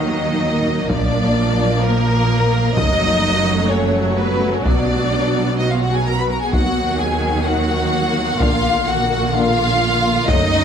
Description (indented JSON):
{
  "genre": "cinematic, hybrid orchestral and electronic film score",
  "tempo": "128 BPM",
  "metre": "4/4",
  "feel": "straight",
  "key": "unclear",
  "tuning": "A4 = 441 Hz",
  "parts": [
    { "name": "warm symphonic violin section", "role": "melody", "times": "0.0-10.6 s", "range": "Bb4 to B5", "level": "-20 LUFS", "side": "left 2 dB", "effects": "none" },
    { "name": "warm symphonic violin section", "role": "second line", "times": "0.0-10.6 s", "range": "Bb3 to B4", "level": "-24 LUFS", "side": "left 1 dB", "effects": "none" },
    { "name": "rich symphonic viola section", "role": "accompaniment", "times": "0.0-10.6 s", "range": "D3 to B3", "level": "-25 LUFS", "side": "right 1 dB", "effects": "none" },
    { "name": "granular cloud pad", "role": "sustained chords", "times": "0.0-10.6 s", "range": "D3 to Gb5", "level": "-25 LUFS", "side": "left 1 dB", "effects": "built-in reverb" },
    { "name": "mellow French horn section", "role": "sustained chords", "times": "0.0-10.5 s", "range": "Gb3 to Gb4", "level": "-27 LUFS", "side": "left 5 dB", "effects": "none" },
    { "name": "rich studio double bass section", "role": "bass", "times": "0.0-10.6 s", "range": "Gb1 to Eb2", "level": "-23 LUFS", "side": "right 3 dB", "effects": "none" },
    { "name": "rich symphonic cello section", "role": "bass", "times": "0.0-10.6 s", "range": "Gb2 to Eb3", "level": "-24 LUFS", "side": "right 2 dB", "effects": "none" },
    { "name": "taiko ensemble", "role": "drums", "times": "0.9-10.6 s", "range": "none", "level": "-21 LUFS", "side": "equal", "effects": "none" }
  ],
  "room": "light reverb",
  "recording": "close, detailed microphones",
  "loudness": "-15 LUFS",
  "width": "side -8 dB against mid",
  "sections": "0.0-10.6 A section",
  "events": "none",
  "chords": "0.0 Ebm; 0.9 Bb; 2.8 Gbm; 4.7 Bm; 6.5 Ebm; 8.4 Bb",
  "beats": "0.43 | 0.90 1.37 1.84 2.31 | 2.78 3.25 3.72 4.18 | 4.65 5.12 5.59 6.06 | 6.53 7.00 7.47 7.93 | 8.40 8.87 9.34 9.81 | 10.28"
}